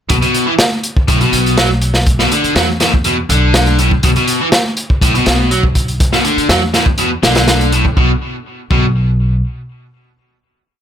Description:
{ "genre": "breakbeat, breaks", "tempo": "122 BPM", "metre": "4/4", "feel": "straight", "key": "B minor", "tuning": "A4 = 443 Hz", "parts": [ { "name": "biting overdriven guitar", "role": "riff", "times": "0.1-8.8 s", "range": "A2 to F#3", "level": "-15 LUFS", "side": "equal", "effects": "tape echo" }, { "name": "upright bass", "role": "bass", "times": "0.1-9.4 s", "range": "B1 to E2", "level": "-16 LUFS", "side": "equal", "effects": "none" }, { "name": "crunchy breakbeat drum kit", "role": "drums", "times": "0.1-8.9 s", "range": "hi-hat, kick drum, snare drum", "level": "-13 LUFS", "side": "equal", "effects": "none" } ], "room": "little or no reverb", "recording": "none", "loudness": "-10 LUFS", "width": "side -9 dB against mid", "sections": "0.1-8.0 drop; 8.0-10.8 final note", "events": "drop 0.1-8.0", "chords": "0.1 Bm; 8.0 N.C." }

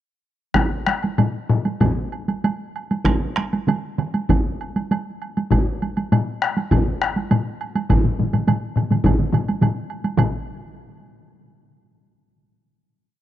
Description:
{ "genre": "japanese traditional, taiko drum ensemble", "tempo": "95-112 BPM", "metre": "4/4", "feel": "straight", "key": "none", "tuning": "none", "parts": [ { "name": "solo taiko drums", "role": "percussion", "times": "0.5-10.7 s", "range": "none", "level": "-21 LUFS", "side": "left 4 dB", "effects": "none" }, { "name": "taiko ensemble", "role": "percussion", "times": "0.5-10.4 s", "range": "none", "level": "-22 LUFS", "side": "equal", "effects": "none" }, { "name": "solo taiko drums", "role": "percussion", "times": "0.6-10.4 s", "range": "none", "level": "-24 LUFS", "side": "right 3 dB", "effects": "none" }, { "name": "woodblock", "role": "percussion", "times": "0.6-10.4 s", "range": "none", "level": "-32 LUFS", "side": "right 7 dB", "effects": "none" }, { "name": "taiko ensemble", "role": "percussion", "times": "3.0-10.7 s", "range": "none", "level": "-25 LUFS", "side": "right 6 dB", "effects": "none" } ], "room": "light reverb, small room ambience", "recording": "dry, close 1970s-style studio recording", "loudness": "-19 LUFS", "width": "side -12 dB against mid", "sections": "0.5-10.2 A section; 10.2-12.4 final hit", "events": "speeding up 0.5-12.4", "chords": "none" }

